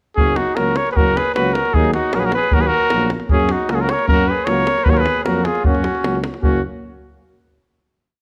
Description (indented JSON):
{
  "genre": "balkan folk, Balkan brass band",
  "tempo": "154 BPM",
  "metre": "2/4",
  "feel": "straight",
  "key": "F# major",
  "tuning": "A4 = 442 Hz",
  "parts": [
    { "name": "warm trumpet", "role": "melody", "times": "0.2-6.6 s", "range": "F#4 to C#5", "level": "-21 LUFS", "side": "equal", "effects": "none" },
    { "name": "warm trumpet", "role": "second line", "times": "0.2-6.6 s", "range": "C#4 to A#4", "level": "-28 LUFS", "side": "equal", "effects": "none" },
    { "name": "dark French horn", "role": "accompaniment", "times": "0.2-6.6 s", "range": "A#3", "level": "-29 LUFS", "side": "equal", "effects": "none" },
    { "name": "warm euphonium", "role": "accompaniment", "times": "0.2-6.6 s", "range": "F#3", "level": "-29 LUFS", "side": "equal", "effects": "none" },
    { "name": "mellow tuba", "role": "bass", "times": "0.2-6.6 s", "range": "F#1 to F#2", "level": "-26 LUFS", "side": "equal", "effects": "none" },
    { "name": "davul", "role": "percussion", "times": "0.2-6.6 s", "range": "none", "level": "-22 LUFS", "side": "equal", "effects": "none" }
  ],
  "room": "moderate recital hall reverb, RT60 1.4 s",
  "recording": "close, detailed microphones",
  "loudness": "-17 LUFS",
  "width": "mono",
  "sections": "0.2-6.4 A section; 6.4-7.2 final chord",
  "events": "none",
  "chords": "0.2 F#; 1.7 D#m; 3.3 F#; 4.9 D#m; 5.6 F#"
}